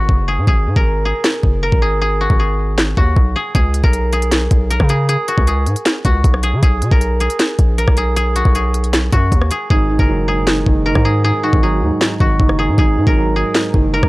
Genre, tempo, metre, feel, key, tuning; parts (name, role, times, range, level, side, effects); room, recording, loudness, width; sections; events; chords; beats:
hip hop, trap; 156 BPM; 4/4; half-time; G# minor; A4 = 440 Hz
guzheng; melody; 0.0-14.1 s; F#4 to A#4; -19 LUFS; equal; low-pass filter
distorted 808-style bass; bass; 0.0-14.1 s; F#1 to C#3; -17 LUFS; equal; distortion
downlifter; sound effects; 0.0-0.5 s; -44 LUFS; left 1 dB
trap drum kit; drums; 0.1-14.1 s; handclaps, hi-hat, kick drum, rim click, snare drum; -14 LUFS; equal
dark baby grand piano; accompaniment; 9.7-14.1 s; G#2 to F#3; -19 LUFS; right 2 dB; low-pass filter
digital ambience; dry, gritty hardware recording, cassette tape; -12 LUFS; side -20 dB against mid
0.0-14.1 A section
break 0.0-3.5; hi-hats muted 9.7-14.1
0.0 G#7(no3); 3.5 C#5; 6.6 B5; 9.7 G#7(no3)
0.09 | 0.47 0.86 1.24 1.63 | 2.01 2.40 2.78 3.17 | 3.55 3.93 4.32 4.70 | 5.09 5.47 5.86 6.24 | 6.63 7.01 7.40 7.78 | 8.16 8.55 8.93 9.32 | 9.70 10.09 10.47 10.86 | 11.24 11.63 12.01 12.40 | 12.78 13.16 13.55 13.93